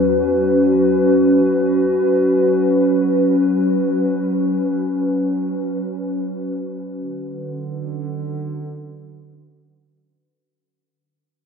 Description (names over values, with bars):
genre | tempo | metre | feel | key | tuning
ambient | free time | none | none | unclear | A4 = 444 Hz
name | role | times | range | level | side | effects
warbly tape-like pad | sustained chords | 0.0-10.4 s | E2 to B4 | -16 LUFS | equal | chorus, built-in reverb
room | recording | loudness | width
wet huge ambient reverb, RT60 8.0 s | none | -16 LUFS | side -6 dB against mid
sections
0.0-10.4 A section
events
fade-out 5.8-10.4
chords
0.2 F#sus4; 7.0 D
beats
free time